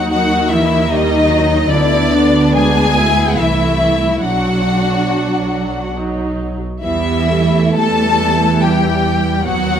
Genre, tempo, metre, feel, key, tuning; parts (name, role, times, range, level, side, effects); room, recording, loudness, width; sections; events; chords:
classical, slow romantic movement for string orchestra; 70 BPM; 3/4; uneven beats, rubato; E minor; A4 = 440 Hz
warm studio violin section; melody; 0.0-9.8 s; D5 to A5; -18 LUFS; left 4 dB
clear studio violin section; second line; 0.0-9.8 s; D4 to A4; -21 LUFS; left 5 dB
warm studio viola section; accompaniment; 0.0-9.8 s; D#3 to E4; -18 LUFS; right 2 dB
rich studio double bass section; bass; 0.0-9.8 s; B1 to E2; -19 LUFS; right 3 dB
rich symphonic cello section; bass; 0.0-9.8 s; D3 to A3; -20 LUFS; right 2 dB
light reverb; close, detailed microphones; -12 LUFS; side -8 dB against mid
0.0-9.8 A section
0.0 B/D# (rootless); 1.7 E7/D; 3.4 Am/C; 4.2 B5; 6.0 B; 6.8 Em